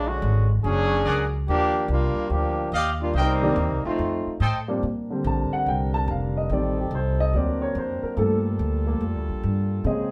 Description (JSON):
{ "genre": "jazz, big band swing", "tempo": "143 BPM", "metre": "4/4", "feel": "swing 65% on 8ths", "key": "Bb major", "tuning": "A4 = 441 Hz", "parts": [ { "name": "bright trombone section", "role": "second line", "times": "0.0-4.4 s", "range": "D3 to Ab4", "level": "-27 LUFS", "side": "equal", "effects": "none" }, { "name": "upright bass", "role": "bass", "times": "0.0-10.1 s", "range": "F1 to Bb2", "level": "-27 LUFS", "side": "equal", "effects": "none" }, { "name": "clear trumpet section", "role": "stabs", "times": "1.1-4.6 s", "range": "G4 to G5", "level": "-28 LUFS", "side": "equal", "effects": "none" }, { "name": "warm upright piano", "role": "accompaniment", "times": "3.4-10.1 s", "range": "Db3 to A5", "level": "-28 LUFS", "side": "equal", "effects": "none" }, { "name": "brilliant trombone section", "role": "sustained chords", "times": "4.8-10.1 s", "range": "Bb2 to Bb4", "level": "-36 LUFS", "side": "equal", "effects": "none" } ], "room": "wet studio reverb, RT60 0.7 s", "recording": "band playing live in one room", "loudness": "-24 LUFS", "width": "mono", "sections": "0.0-4.8 A section; 4.8-10.1 B section", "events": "trombone section solo 0.0-4.8; upright piano solo 4.8-10.1", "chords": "0.0 Bb7alt; 1.5 Ebmaj9; 3.1 Cm7; 4.0 F7; 4.8 Bb69; 6.5 Am7b5; 7.3 D7alt; 8.2 Gm9", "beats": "0.21 0.63 1.05 | 1.47 1.89 2.31 2.73 | 3.15 3.56 3.98 4.40 | 4.82 5.24 5.66 6.08 | 6.50 6.92 7.33 7.75 | 8.17 8.59 9.01 9.43 | 9.85" }